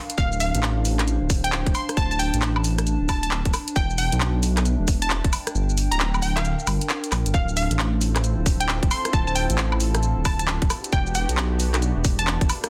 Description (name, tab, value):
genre	UK garage, two-step garage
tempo	134 BPM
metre	4/4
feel	swing 64% on 16ths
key	D minor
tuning	A4 = 440 Hz
part	warbly tape-like pad	texture	0.0-12.7 s	D4 to A5	-35 LUFS	equal	chorus, built-in reverb, phaser, sidechain pumping
part	garage drum kit	drums	0.1-12.7 s	handclaps, hi-hat, rim click, shaker, woodblock	-29 LUFS	equal	soft clipping on snare, small room ambience
part	glassy wavetable pluck	melody	0.2-12.3 s	F5 to C6	-30 LUFS	equal	chorus, digital delay
part	dark detuned saw bass	bass	0.2-12.5 s	D1 to B1	-26 LUFS	equal	sidechain pumping
part	electronic kick drum	drums	0.2-12.5 s	none	-25 LUFS	equal	small room ambience
part	warm analog pad	sustained chords	7.3-12.7 s	Bb3 to A4	-37 LUFS	equal	chorus, sidechain pumping
room	light reverb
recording	dense, heavily limited modern master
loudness	-23 LUFS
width	mono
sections	0.0-12.7 A section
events	kick drops out 5.6-7.3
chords	0.2 Dm7; 3.5 Em7; 5.3 Gm7; 7.3 Dm7; 10.7 Em7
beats	| 0.18 0.63 1.07 1.52 | 1.97 2.42 2.87 3.31 | 3.76 4.21 4.66 5.10 | 5.55 6.00 6.45 6.89 | 7.34 7.79 8.24 8.69 | 9.13 9.58 10.03 10.48 | 10.93 11.37 11.82 12.27